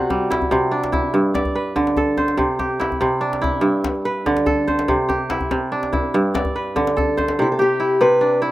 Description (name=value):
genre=west african traditional, West African string and xylophone music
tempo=96 BPM (dotted quarters)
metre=12/8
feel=straight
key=C lydian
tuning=A4 = 438 Hz
part: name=fingerpicked steel-string acoustic guitar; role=melody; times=0.0-1.1, 7.4-8.4 s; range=E4 to B4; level=-19 LUFS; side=left 1 dB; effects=none
part: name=kora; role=arpeggios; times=0.0-8.5 s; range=G2 to D5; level=-18 LUFS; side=right 1 dB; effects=none
part: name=djembe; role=percussion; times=0.1-7.4 s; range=none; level=-26 LUFS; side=left 2 dB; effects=none
room=light reverb, small room ambience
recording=rough home demo mix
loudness=-17 LUFS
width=side -16 dB against mid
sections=0.0-7.4 A section; 7.4-8.5 B section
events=steel-string acoustic guitar solo 7.4-8.5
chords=0.0 C; 1.1 G; 2.4 C; 3.6 G; 4.9 C; 6.1 G; 7.4 C